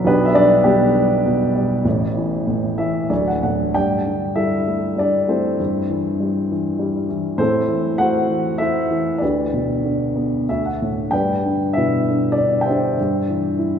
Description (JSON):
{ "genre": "classical, lyrical solo piano", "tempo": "98 BPM", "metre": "3/4", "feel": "rubato", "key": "D major, G major from 3.7 s", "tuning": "A4 = 439 Hz", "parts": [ { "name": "dark baby grand piano", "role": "solo", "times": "0.0-13.8 s", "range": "D1 to G5", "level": "-16 LUFS", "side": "equal", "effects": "none" } ], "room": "wet church reverb, RT60 2.7 s", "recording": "recorded in a church or concert hall", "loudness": "-17 LUFS", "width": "side -8 dB against mid", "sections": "0.0-3.7 A section; 3.7-13.8 B section", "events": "grand piano fill 2.5-3.7, 10.2-11.1, 13.6", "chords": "0.1 G/B; 1.9 A5; 3.1 D; 3.7 Gsus2; 5.6 C/G; 7.4 Am; 9.2 G/D; 10.5 D; 11.1 G; 13.0 C/G", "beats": "| 0.06 0.66 1.25 | 1.85 2.47 3.10 | 3.75 4.37 4.98 | 5.59 6.20 6.80 | 7.40 8.00 8.61 | 9.22 9.84 10.49 | 11.13 11.76 12.38 | 12.97 13.57" }